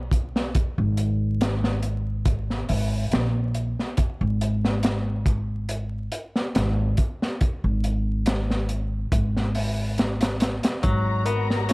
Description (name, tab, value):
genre	trip hop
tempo	70 BPM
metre	4/4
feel	straight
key	G# minor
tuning	A4 = 441 Hz
part	upright bass	bass	0.0-11.7 s	G#1 to B1	-24 LUFS	equal	none
part	crunchy breakbeat drum kit	drums	0.1-11.7 s	hi-hat, kick drum, snare drum	-24 LUFS	equal	none
part	warm studio string section	sustained chords	10.8-11.7 s	G#3 to A#5	-31 LUFS	left 2 dB	none
part	semi-hollow electric guitar	arpeggios	10.8-11.7 s	F#3 to B3	-28 LUFS	left 2 dB	none
part	felt-muted upright piano	melody	11.3-11.7 s	A#4	-29 LUFS	left 6 dB	none
room	small room ambience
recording	vinyl crackle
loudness	-22 LUFS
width	side -25 dB against mid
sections	0.0-11.7 A section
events	none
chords	0.0 G#madd9; 4.0 N.C.; 10.8 G#m9